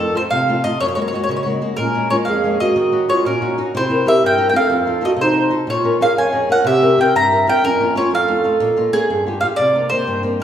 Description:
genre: italian folk, Italian serenade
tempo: 123 BPM (dotted quarters)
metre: 6/8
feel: straight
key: Bb minor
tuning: A4 = 440 Hz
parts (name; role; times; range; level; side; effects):
- mandolin; melody; 0.0-10.2 s; Ab4 to Bb5; -17 LUFS; equal; none
- flamenco guitar; accompaniment; 0.0-10.4 s; F2 to Bb4; -20 LUFS; left 1 dB; none
- mellow clarinet; second line; 1.8-9.2 s; Db4 to E5; -18 LUFS; right 2 dB; none
room: wet recital hall reverb, RT60 1.6 s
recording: heard from further back in the room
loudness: -14 LUFS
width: side -9 dB against mid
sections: 0.0-9.6 A section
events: none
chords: 0.0 F7; 0.8 Gbadd9; 1.8 Bbm7; 2.8 Ebm7; 3.7 C7; 4.7 F7; 5.7 Bbm7; 6.7 C7; 7.6 Bbm/F; 8.1 F7; 8.6 Bbm7; 9.1 G7; 9.6 Cm7

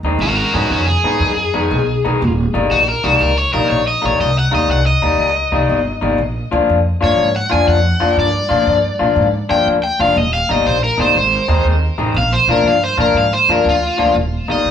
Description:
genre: electric blues shuffle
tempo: 121 BPM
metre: 4/4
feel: swing 68% on 8ths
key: unclear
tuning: A4 = 440 Hz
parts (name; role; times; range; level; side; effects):
- electric guitar through a small old amp; riff; 0.0-14.7 s; Eb3 to F4; -16 LUFS; left 4 dB; none
- upright bass; bass; 0.0-14.7 s; Eb1 to Bb2; -18 LUFS; right 1 dB; none
- crunchy overdriven guitar; melody; 0.2-14.7 s; Db4 to Ab5; -17 LUFS; equal; digital delay
room: moderate studio reverb, RT60 0.7 s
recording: band playing live in one room, small room ambience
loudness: -12 LUFS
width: side -8 dB against mid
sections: 0.0-14.1 A section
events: overdriven electric guitar solo 0.0-14.1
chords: 0.2 Abm7; 2.2 Eb; 6.2 Bb; 10.2 Eb; 11.2 Ab; 12.2 Bb; 14.1 Eb

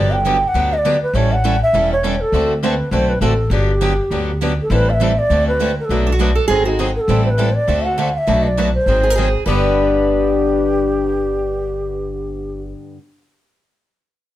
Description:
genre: acoustic string swing (jazz manouche)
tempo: 202 BPM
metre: 4/4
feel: swing 58% on 8ths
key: G major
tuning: A4 = 440 Hz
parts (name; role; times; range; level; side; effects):
- bansuri; melody; 0.0-12.6 s; G4 to G5; -19 LUFS; equal; plate reverb
- picked steel-string acoustic guitar; accompaniment; 0.0-13.0 s; G2 to B4; -24 LUFS; right 6 dB; none
- picked swing-style acoustic guitar; accompaniment; 0.0-13.0 s; G2 to A4; -22 LUFS; left 5 dB; none
- upright bass; bass; 0.0-12.7 s; E1 to D2; -19 LUFS; equal; none
- picked steel-string acoustic guitar; second line; 6.1-6.9, 9.0-12.7 s; D4 to B4; -22 LUFS; right 5 dB; none
room: moderate studio reverb, RT60 0.8 s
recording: none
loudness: -14 LUFS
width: side -13 dB against mid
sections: 0.0-4.7 A section; 4.7-9.5 B section; 9.5-11.8 C section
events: none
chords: 0.0 Gmaj7; 1.1 A7; 2.3 D7; 3.5 Gmaj7; 4.7 Am7; 5.3 D7; 5.9 Bm7; 6.5 Ab7; 7.1 Am9; 7.7 D7; 8.3 Bm7; 8.9 Ab7; 9.5 G

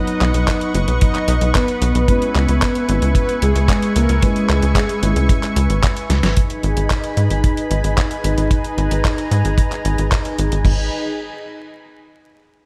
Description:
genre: italo disco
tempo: 112 BPM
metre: 4/4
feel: straight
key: G# minor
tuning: A4 = 439 Hz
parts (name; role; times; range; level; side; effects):
- mellow synth brass; melody; 0.0-5.8 s; G#3 to D#5; -24 LUFS; equal; chorus, tape echo
- lush unison pad; sustained chords; 0.0-10.9 s; D#4 to C#6; -26 LUFS; equal; chorus
- dark baby grand piano; stabs; 0.0-6.3 s; F#3 to B4; -28 LUFS; equal; none
- detuned 8-bit digital drum machine; drums; 0.1-10.8 s; crash cymbal, handclaps, hi-hat, snare drum; -27 LUFS; equal; none
- tight sequencer bass; bass; 0.2-10.9 s; F#1 to G#2; -19 LUFS; equal; none
- kick drum; drums; 0.5-10.8 s; none; -20 LUFS; equal; none
room: light reverb, small room reverb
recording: vinyl crackle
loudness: -17 LUFS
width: mono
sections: 0.0-6.4 A section; 6.4-10.7 B section; 10.7-12.7 C section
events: drum fill 6.1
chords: 0.0 B; 2.1 C#m7; 6.4 G#m

